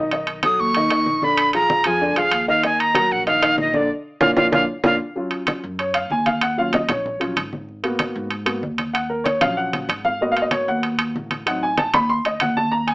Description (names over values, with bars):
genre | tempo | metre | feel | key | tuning
Afro-Cuban jazz | 190 BPM | 4/4 | straight | Eb minor | A4 = 440 Hz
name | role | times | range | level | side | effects
warm upright piano | accompaniment | 0.0-12.9 s | D3 to C6 | -21 LUFS | equal | none
upright bass | bass | 0.0-12.9 s | Ab1 to Ab2 | -29 LUFS | equal | none
congas | percussion | 0.1-12.9 s | none | -28 LUFS | equal | none
timbales | percussion | 0.1-12.9 s | none | -23 LUFS | right 2 dB | none
breathy bright jazz flute | melody | 0.4-5.0 s | D5 to D#6 | -18 LUFS | right 1 dB | none
room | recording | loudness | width
moderate studio reverb, RT60 0.6 s | AM radio sound | -17 LUFS | side -22 dB against mid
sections
0.0-5.2 A section; 5.2-12.9 B section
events
band accent 3.9-5.2; drum fill 4.4-5.2, 9.7-10.2; upright piano solo 5.2-12.9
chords
0.1 B7; 1.4 Bb7; 2.6 Ebm; 3.9 Bb; 5.2 Ebm7; 7.7 Abm7; 8.9 Ebm7; 10.2 Abm7; 11.5 Adim7